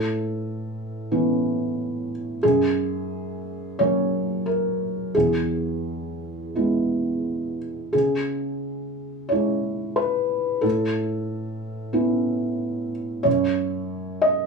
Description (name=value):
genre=neoclassical minimalist piano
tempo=84-93 BPM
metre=4/4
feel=rubato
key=unclear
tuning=A4 = 440 Hz
part: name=felt-muted upright piano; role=solo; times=0.0-14.5 s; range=E2 to D#5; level=-22 LUFS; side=right 1 dB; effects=none
room=light reverb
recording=studio ambience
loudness=-22 LUFS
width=side -4 dB against mid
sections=0.0-14.5 A section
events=none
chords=0.0 Aadd9; 2.4 F#add9; 5.1 E; 7.9 C#m; 10.6 Aadd9; 13.3 F#5